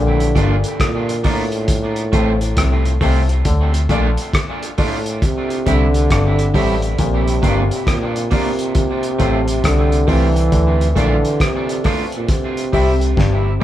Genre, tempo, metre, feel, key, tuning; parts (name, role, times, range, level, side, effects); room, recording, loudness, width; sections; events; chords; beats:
roots reggae; 68 BPM; 4/4; swing 64% on 16ths; F major; A4 = 439 Hz
breathy trombone; melody; 0.0-13.6 s; A2 to E3; -20 LUFS; right 1 dB; tape echo
mellow clav; riff; 0.0-13.6 s; G2 to D3; -26 LUFS; left 2 dB; auto-wah, tape echo
vintage muted fingered electric bass; bass; 0.0-13.6 s; G1 to D2; -17 LUFS; equal
cloth-damped thuddy drum kit; drums; 0.2-13.6 s; hi-hat, kick drum, rim click, snare drum, toms; -20 LUFS; equal
electric guitar at the edge of break-up; accompaniment; 0.4-13.6 s; G3 to F4; -24 LUFS; right 3 dB; tape echo
warm upright piano; stabs; 0.4-13.6 s; F4 to F5; -26 LUFS; left 3 dB
moderate studio reverb, RT60 0.9 s; band playing live in one room; -14 LUFS; side -12 dB against mid
0.0-13.6 A section
drum fill 13.2-13.6
0.0 Bb; 1.7 F; 3.5 Dm; 5.2 C; 7.0 Bb; 8.8 F; 10.5 Dm; 12.3 C
0.80 1.69 2.57 | 3.45 4.34 5.22 6.10 | 6.99 7.87 8.76 9.64 | 10.52 11.40 12.29 13.17